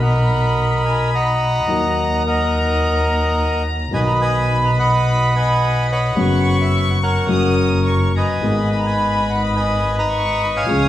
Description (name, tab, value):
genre	tango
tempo	107 BPM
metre	4/4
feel	rubato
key	B major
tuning	A4 = 440 Hz
part	bandoneon	melody	0.0-10.9 s	A#4 to B5	-20 LUFS	equal	plate reverb
part	warm studio violin section	second line	0.0-10.9 s	A#5 to E#6	-23 LUFS	equal	none
part	warm grand piano	accompaniment	0.0-10.9 s	G#1 to G#4	-22 LUFS	left 2 dB	none
part	dark double bass	bass	0.0-10.9 s	F#1 to D#2	-20 LUFS	right 1 dB	none
room	wet large studio reverb, RT60 0.8 s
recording	heard from further back in the room, vinyl crackle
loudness	-15 LUFS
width	side -13 dB against mid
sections	0.0-10.9 A section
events	none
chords	0.0 Bmaj7; 1.7 D#m; 3.9 B; 6.2 F#sus4; 7.3 F#; 8.4 G#m